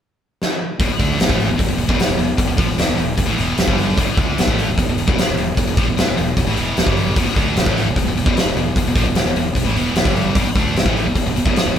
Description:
hard rock; 151 BPM; 4/4; straight; E minor; A4 = 435 Hz
huge arena drum kit; drums; 0.4-11.8 s; hi-hat, kick drum, snare drum; -17 LUFS; equal
heavy high-gain guitar; riff; 0.8-11.8 s; E2 to D4; -23 LUFS; left 6 dB; distortion
sludgy distorted guitar; riff; 0.8-11.8 s; E2 to D4; -23 LUFS; right 5 dB; overdrive
fuzz fingered electric bass; bass; 0.8-11.8 s; E1 to D2; -23 LUFS; equal; overdrive
moderate stone room reverb, RT60 1.0 s; band playing live in one room; -15 LUFS; side -9 dB against mid
0.8-11.8 A section
drum fill 0.4-0.8
0.0 N.C.; 0.8 Em
0.01 0.41 | 0.80 1.20 1.60 2.00 | 2.39 2.79 3.19 3.58 | 3.98 4.38 4.78 5.18 | 5.57 5.97 6.37 6.77 | 7.17 7.57 7.96 8.36 | 8.76 9.16 9.56 9.96 | 10.36 10.76 11.16 11.56

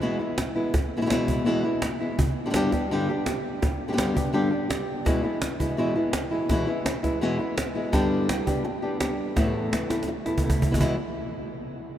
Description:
flamenco; 167 BPM; 4/4; straight; A4 = 440 Hz
flamenco guitar; melody; 0.0-11.0 s; E2 to G4; -25 LUFS; left 1 dB
cajon; percussion; 0.0-10.9 s; -28 LUFS; right 1 dB
wet cathedral reverb, RT60 6.5 s; in a vast, echoing space; -23 LUFS; side -11 dB against mid
0.0-10.8 A section; 10.8-12.0 B section
drum fill 9.9-10.8
0.0 E; 2.2 G; 5.1 E; 7.9 G; 9.4 Esus4; 10.8 E5
0.02 0.38 | 0.74 1.10 1.46 1.82 | 2.18 2.54 2.90 3.27 | 3.62 3.98 4.34 4.70 | 5.06 5.42 5.78 6.14 | 6.50 6.86 7.22 7.58 | 7.93 8.29 8.65 9.01 | 9.37 9.73 10.09 10.44 | 10.80

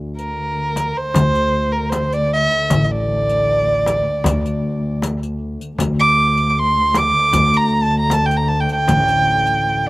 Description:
Arabic maqam ensemble; 78 BPM; 4/4; straight; D maqam bayati; A4 = 441 Hz
upright bass; bass; 0.0-9.9 s; A1 to D2; -21 LUFS; left 1 dB
dark double bass; drone; 0.0-9.9 s; D2; -25 LUFS; left 1 dB
dark violin; melody; 0.2-9.9 s; Bb4 to D6; -16 LUFS; right 1 dB
riq; percussion; 0.2-9.6 s; -29 LUFS; left 5 dB
darbuka; percussion; 0.4-9.6 s; -23 LUFS; left 2 dB
frame drum; percussion; 0.8-9.1 s; -24 LUFS; left 2 dB
little or no reverb; recorded outdoors, with no room sound; -15 LUFS; side -19 dB against mid
0.0-9.9 A section
0.38 1.15 1.93 | 2.70 3.48 4.25 5.02 | 5.80 6.57 7.34 8.12 | 8.89 9.66

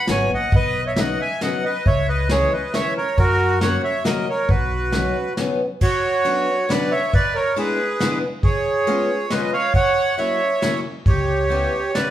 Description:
musette waltz; 136 BPM; 3/4; straight; B major, B harmonic minor from 5.8 s; A4 = 440 Hz
accordion; melody; 0.0-12.1 s; F#4 to B5; -20 LUFS; right 2 dB
picked old ladder-braced acoustic guitar; accompaniment; 0.1-12.1 s; E3 to F#4; -25 LUFS; left 4 dB
upright bass; bass; 0.1-5.1, 11.1-11.6 s; G#1 to F#2; -24 LUFS; left 1 dB
vintage brush drum kit; drums; 0.1-12.1 s; crash cymbal, hi-hat, kick drum, ride cymbal, snare drum; -22 LUFS; equal
wet large studio reverb, RT60 0.9 s; band playing live in one room; -17 LUFS; side -12 dB against mid
0.0-5.8 A section; 5.8-12.1 B section
0.0 F#sus4; 0.5 Badd9; 1.9 C#m; 3.2 F#; 4.5 Badd9; 5.8 Bmadd9; 7.1 E7; 8.4 C#7; 9.7 F#7; 11.1 C#m7b5
0.08 | 0.52 0.97 1.41 | 1.85 2.30 2.73 | 3.17 3.61 4.05 | 4.49 4.93 5.37 | 5.82 6.26 6.70 | 7.14 7.57 8.00 | 8.44 8.87 9.30 | 9.74 10.18 10.62 | 11.06 11.51 11.95

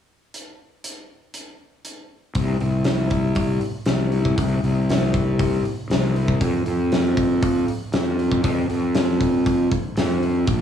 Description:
rock, shoegaze and dream pop; 118 BPM; 4/4; straight; A4 = 440 Hz
big rock drum kit; drums; 0.3-10.6 s; hi-hat, kick drum, snare drum; -23 LUFS; left 1 dB
fuzz fingered electric bass; bass; 2.4-10.6 s; Bb1 to F2; -20 LUFS; equal; overdrive
little or no reverb; home recording on cassette, small room ambience; -18 LUFS; side -9 dB against mid
0.3-2.4 A section; 2.4-10.6 B section
| 0.33 0.84 1.34 1.85 | 2.36 2.86 3.37 3.88 | 4.38 4.89 5.40 5.91 | 6.41 6.92 7.43 7.94 | 8.44 8.95 9.46 9.97 | 10.47

